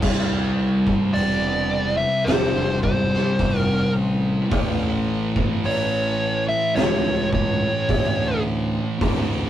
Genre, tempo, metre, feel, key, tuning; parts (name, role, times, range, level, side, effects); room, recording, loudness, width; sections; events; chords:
stoner and doom metal; 53 BPM; 4/4; straight; A4 = 440 Hz
thick fuzz guitar; riff; 0.0-9.5 s; D2 to C4; -26 LUFS; left 3 dB; distortion
thick fuzz guitar; riff; 0.0-9.5 s; D2 to C4; -25 LUFS; right 2 dB; distortion
fuzz picked electric bass; bass; 0.0-9.5 s; E1 to D2; -28 LUFS; equal; overdrive
oversized low-tuned drum kit; drums; 0.0-9.3 s; crash cymbal, hi-hat, kick drum, snare drum; -24 LUFS; equal
fuzz lead guitar; melody; 1.1-8.4 s; C5 to E5; -23 LUFS; equal; distortion
light reverb; rough rehearsal-room recording, warm saturation; -19 LUFS; side -11 dB against mid
0.0-9.5 A section
0.0 C; 4.5 A